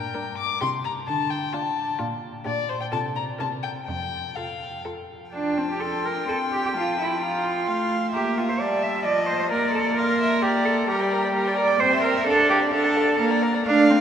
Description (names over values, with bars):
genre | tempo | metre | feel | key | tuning
quick classical-period movement for string quartet | 130 BPM | 3/4 | straight | F major | A4 = 440 Hz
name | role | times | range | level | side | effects
dark violin | melody | 0.0-14.0 s | C5 to D6 | -29 LUFS | left 6 dB | none
rich cello | bass | 0.0-14.0 s | F2 to E5 | -24 LUFS | right 2 dB | none
rich violin | second line | 0.1-14.0 s | F4 to G5 | -29 LUFS | left 2 dB | none
warm viola | accompaniment | 0.2-14.0 s | F3 to F4 | -28 LUFS | right 1 dB | none
room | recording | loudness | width
wet cathedral reverb, RT60 5.3 s | recorded in a church or concert hall | -21 LUFS | side -9 dB against mid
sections
0.0-5.3 A section; 5.3-14.0 B section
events
none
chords
0.0 Gm; 0.6 C; 1.1 Dm; 2.0 Bb; 2.9 F/C; 3.4 C7; 3.9 F; 6.3 C5; 6.7 F; 8.1 Bb; 9.1 F7; 9.5 Bb; 10.9 Gm; 11.8 C; 12.3 Dm; 13.2 Bb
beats
0.15 0.61 | 1.07 1.53 2.00 | 2.46 2.92 3.40 | 3.88 4.37 4.85 | 5.33 5.80 6.28 | 6.75 7.21 7.67 | 8.14 8.60 9.05 | 9.51 9.97 10.43 | 10.88 11.34 11.80 | 12.27 12.73 13.19 | 13.65